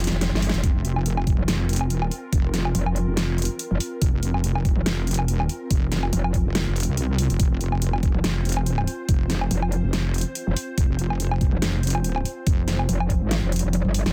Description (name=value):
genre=heavy wobble dubstep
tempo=142 BPM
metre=4/4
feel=swing 55% on 16ths, half-time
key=unclear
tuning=A4 = 441 Hz
part: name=evolving wavetable pad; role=sustained chords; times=0.0-14.1 s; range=C4 to E5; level=-37 LUFS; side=equal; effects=ensemble chorus, built-in reverb, sidechain pumping
part: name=metallic wobble bass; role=bass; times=0.0-14.1 s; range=F1 to Ab1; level=-25 LUFS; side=equal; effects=chorus, overdrive
part: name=dubstep drum kit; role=drums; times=0.0-14.1 s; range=hi-hat, snare drum, toms, woodblock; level=-30 LUFS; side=equal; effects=overdrive
part: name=wobble bass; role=bass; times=0.6-12.9 s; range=F1 to C2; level=-26 LUFS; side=equal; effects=chorus, overdrive
part: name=electronic kick drum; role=drums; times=0.6-13.2 s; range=none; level=-23 LUFS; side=equal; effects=none
room=digital ambience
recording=dense, heavily limited modern master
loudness=-23 LUFS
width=mono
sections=0.0-14.1 A section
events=drum fill 0.0-0.6, 13.7-14.1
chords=0.0 F5